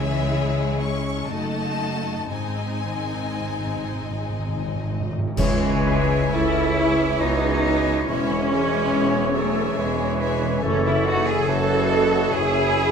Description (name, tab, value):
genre	classical, slow romantic movement for symphony orchestra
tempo	56-72 BPM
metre	3/4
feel	rubato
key	C# minor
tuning	A4 = 440 Hz
part	warm studio violin section	melody	0.0-12.9 s	E5 to C#6	-35 LUFS	left 4 dB	none
part	rich studio violin section	second line	0.0-12.9 s	D#4 to E5	-34 LUFS	left 2 dB	none
part	warm studio viola section	accompaniment	0.0-12.9 s	E3 to F#4	-31 LUFS	right 1 dB	none
part	dark French horn section	sustained chords	0.0-12.9 s	G#3 to A4	-28 LUFS	left 3 dB	none
part	concert harp	arpeggios	0.0-12.9 s	E2 to G#5	-29 LUFS	left 8 dB	none
part	dark studio double bass section	bass	0.0-12.9 s	E1 to C#2	-29 LUFS	right 4 dB	none
part	rich studio cello section	bass	0.0-12.9 s	E3 to A4	-27 LUFS	right 3 dB	none
part	timpani	percussion	2.3-6.7 s	G#2 to C#3	-30 LUFS	equal	none
part	mellow clarinet	second line	5.4-12.9 s	E4 to D#5	-29 LUFS	left 2 dB	none
part	small flute group	second line	5.4-12.9 s	G#4 to A5	-30 LUFS	left 4 dB	none
part	warm oboe	second line	5.4-12.9 s	C#5	-32 LUFS	right 2 dB	none
part	warm bassoon	accompaniment	5.4-12.9 s	E3	-30 LUFS	right 1 dB	none
part	warm tuba	bass	5.4-12.9 s	E1 to C#2	-28 LUFS	right 6 dB	none
part	clash cymbals and concert bass drum	percussion	5.4-7.2 s	none	-30 LUFS	equal	none
room	moderate scoring stage reverb, RT60 1.5 s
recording	none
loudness	-20 LUFS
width	side -6 dB against mid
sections	0.0-5.4 A section; 5.4-12.9 B section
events	timpani fill 2.3-5.4; band accent 5.4-6.3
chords	0.0 C#m; 1.3 D#dim/F#; 2.3 G#; 5.4 C#m; 8.1 C#m/E; 10.6 F#m7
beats	0.36 1.30 | 2.31 3.37 4.38 | 5.37 6.32 7.19 | 8.08 8.93 9.76 | 10.62 11.47 12.32